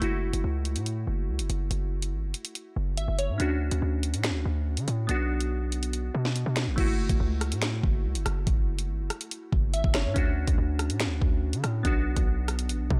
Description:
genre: hip hop, drill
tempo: 142 BPM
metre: 4/4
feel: half-time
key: F# minor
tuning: A4 = 442 Hz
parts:
  - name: glassy digital keys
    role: accompaniment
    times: 0.0-13.0 s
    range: A3 to E5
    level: -36 LUFS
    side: equal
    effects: chorus, low-pass filter
  - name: hard-hitting 808-style bass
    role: bass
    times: 0.0-13.0 s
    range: F#1 to D3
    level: -31 LUFS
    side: equal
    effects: none
  - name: drill drum kit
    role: drums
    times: 0.0-13.0 s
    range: crash cymbal, finger snaps, hi-hat, kick drum, rim click, snare drum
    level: -30 LUFS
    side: equal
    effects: none
room: little or no reverb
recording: none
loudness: -28 LUFS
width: mono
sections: 0.0-6.8 A section; 6.8-13.0 B section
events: none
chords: 0.0 F#m7; 3.4 Dmaj7; 5.1 Bm; 6.8 F#m7; 10.2 Dmaj7; 11.8 Bm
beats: | 0.02 0.44 0.86 1.28 | 1.71 2.13 2.55 2.98 | 3.40 3.82 4.24 4.67 | 5.09 5.51 5.93 6.36 | 6.78 7.20 7.62 8.05 | 8.47 8.89 9.31 9.74 | 10.16 10.58 11.00 11.43 | 11.85 12.27 12.69

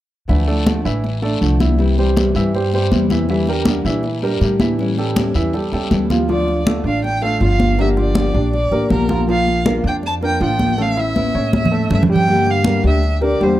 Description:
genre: latin, Cuban son and guajira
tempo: 160 BPM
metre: 4/4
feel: straight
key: D minor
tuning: A4 = 438 Hz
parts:
  - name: nylon-string guitar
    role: accompaniment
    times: 0.3-13.6 s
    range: C3 to G4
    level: -21 LUFS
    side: left 2 dB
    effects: none
  - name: clear grand piano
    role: arpeggios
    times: 0.3-13.6 s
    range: E3 to F5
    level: -22 LUFS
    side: right 2 dB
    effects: none
  - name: upright bass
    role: bass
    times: 0.3-13.6 s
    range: G1 to Bb2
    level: -20 LUFS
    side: equal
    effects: none
  - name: congas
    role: percussion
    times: 0.3-13.6 s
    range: none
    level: -20 LUFS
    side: equal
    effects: none
  - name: guiro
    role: percussion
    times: 0.3-6.3 s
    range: none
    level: -31 LUFS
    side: left 8 dB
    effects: none
  - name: dark violin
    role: melody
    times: 6.3-13.6 s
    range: Bb4 to A5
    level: -21 LUFS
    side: right 1 dB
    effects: none
room: small room ambience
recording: dry, close 1970s-style studio recording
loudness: -14 LUFS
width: side -14 dB against mid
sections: 0.3-6.3 A section; 6.3-13.6 B section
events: drum fill 11.2-12.3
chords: 0.3 Dmadd9; 1.8 C; 3.3 Em7b5; 4.8 A7; 6.3 Dm; 7.8 Gm7; 9.3 Bb; 10.8 A; 12.3 Gm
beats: | 0.29 0.67 1.04 1.42 | 1.79 2.17 2.54 2.91 | 3.29 3.66 4.04 4.41 | 4.79 5.16 5.54 5.91 | 6.28 6.66 7.03 7.41 | 7.78 8.16 8.53 8.91 | 9.28 9.66 10.03 10.41 | 10.78 11.16 11.53 11.91 | 12.28 12.66 13.03 13.41

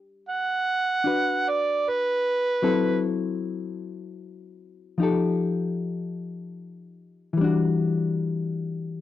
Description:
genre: jazz ballad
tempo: 51 BPM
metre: 4/4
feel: swing 68% on 8ths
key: unclear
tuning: A4 = 440 Hz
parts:
  - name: hollow-body jazz guitar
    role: accompaniment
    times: 0.0-9.0 s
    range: E3 to B4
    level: -25 LUFS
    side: left 4 dB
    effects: none
  - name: overdriven harmonica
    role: melody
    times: 0.3-3.0 s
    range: B4 to F#5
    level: -23 LUFS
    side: right 2 dB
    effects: none
room: light reverb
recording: dry, close 1970s-style studio recording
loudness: -23 LUFS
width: side -12 dB against mid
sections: 0.0-9.0 A section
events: harmonica solo 0.0-9.0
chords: 0.0 Gmaj7; 2.6 F#m7b5; 5.0 F9; 7.3 Em9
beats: 0.24 1.43 | 2.62 3.80 4.98 6.17 | 7.35 8.53

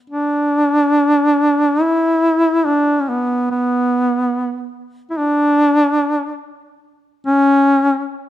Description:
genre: caucasian folk, Caucasian lament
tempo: free time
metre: none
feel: none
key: unclear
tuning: A4 = 438 Hz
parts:
  - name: warm duduk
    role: solo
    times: 0.1-8.1 s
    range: B3 to E4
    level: -14 LUFS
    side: equal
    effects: none
room: light reverb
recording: close, detailed microphones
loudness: -13 LUFS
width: side -12 dB against mid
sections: 0.1-8.3 A section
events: none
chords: none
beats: free time

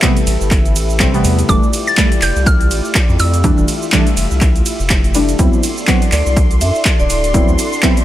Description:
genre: deep house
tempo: 123 BPM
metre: 4/4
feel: swing 57% on 16ths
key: unclear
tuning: A4 = 440 Hz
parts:
  - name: airy breathy pad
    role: sustained chords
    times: 0.0-8.0 s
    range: A3 to E5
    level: -23 LUFS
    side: equal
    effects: chorus, sidechain pumping
  - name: deep mellow chord stab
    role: stabs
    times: 0.0-8.0 s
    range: C3 to F#4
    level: -18 LUFS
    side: equal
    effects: chorus, sidechain pumping, tape echo
  - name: electronic kick drum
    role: drums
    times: 0.0-7.9 s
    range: none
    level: -14 LUFS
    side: equal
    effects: overdrive
  - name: punchy analog drum machine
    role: drums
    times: 0.0-8.0 s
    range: handclaps, hi-hat, ride cymbal, shaker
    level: -19 LUFS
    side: right 1 dB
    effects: overdrive
  - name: round analog bass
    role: bass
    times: 0.3-7.6 s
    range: D1 to F#2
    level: -17 LUFS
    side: equal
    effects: tube saturation, sidechain pumping
  - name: mallet-like synth pluck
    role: melody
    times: 1.5-4.6 s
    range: D6 to A6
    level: -20 LUFS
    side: equal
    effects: chorus, tape echo
  - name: soft string machine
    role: texture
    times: 5.4-8.0 s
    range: C6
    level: -26 LUFS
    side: left 1 dB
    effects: ensemble chorus, sidechain pumping
  - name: vibraphone with medium hard mallets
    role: melody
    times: 6.1-7.5 s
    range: D5 to E5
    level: -20 LUFS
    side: equal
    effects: digital delay
room: little or no reverb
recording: none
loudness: -11 LUFS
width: side -13 dB against mid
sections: 0.0-8.0 A section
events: none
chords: 0.0 Am9; 1.5 Fmaj13; 5.4 D13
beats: 0.03 0.51 1.00 | 1.49 1.98 2.46 2.95 | 3.44 3.93 4.42 4.90 | 5.39 5.88 6.37 6.86 | 7.34 7.83

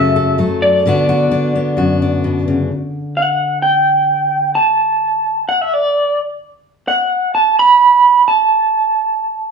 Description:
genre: folk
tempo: 130 BPM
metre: 4/4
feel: straight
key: unclear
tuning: A4 = 436 Hz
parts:
  - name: electric guitar through a small old amp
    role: melody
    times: 0.0-9.5 s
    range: D5 to B5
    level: -12 LUFS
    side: right 2 dB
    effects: harmonic tremolo
  - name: fingerpicked steel-string acoustic guitar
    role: accompaniment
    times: 0.0-4.6 s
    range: F#2 to A4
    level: -16 LUFS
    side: left 2 dB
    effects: none
room: wet large studio reverb, RT60 0.9 s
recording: band playing live in one room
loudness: -12 LUFS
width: side -5 dB against mid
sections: 0.0-2.7 A section; 2.7-9.5 B section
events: none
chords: 0.0 F#m; 0.9 Bm; 2.7 N.C.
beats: 0.40 | 0.86 1.32 1.78 2.25 | 2.71 3.17 3.64 4.10 | 4.56 5.03 5.49 5.95 | 6.42 6.88 7.34 7.80 | 8.27 8.73 9.19

